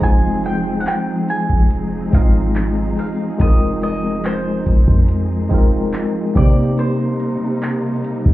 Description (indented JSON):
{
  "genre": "contemporary R&B",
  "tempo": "71 BPM",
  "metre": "4/4",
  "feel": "straight",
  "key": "F minor",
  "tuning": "A4 = 440 Hz",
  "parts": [
    { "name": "bowl-back mandolin", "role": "melody", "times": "0.0-8.3 s", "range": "C5 to Ab5", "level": "-26 LUFS", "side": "right 1 dB", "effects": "none" },
    { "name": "barky tine electric piano", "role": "accompaniment", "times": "0.0-8.3 s", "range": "Ab3 to G5", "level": "-20 LUFS", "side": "left 1 dB", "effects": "medium stereo tremolo" },
    { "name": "warm studio string section", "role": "sustained chords", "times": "0.0-8.3 s", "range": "C3 to Ab4", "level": "-26 LUFS", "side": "right 1 dB", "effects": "none" },
    { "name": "clean 808-style bass", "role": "bass", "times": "0.0-8.3 s", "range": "F1 to C3", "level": "-20 LUFS", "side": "equal", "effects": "none" },
    { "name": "booming analog drum machine", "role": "drums", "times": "0.0-8.3 s", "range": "handclaps, hi-hat, kick drum", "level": "-14 LUFS", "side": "equal", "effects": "vintage 12-bit sampler grit" }
  ],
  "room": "digital ambience",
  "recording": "heard muffled through a wall, club reverb, EQ",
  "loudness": "-15 LUFS",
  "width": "side -16 dB against mid",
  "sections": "0.0-8.3 A section",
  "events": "none",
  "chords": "0.0 Fm7; 6.4 Cm7"
}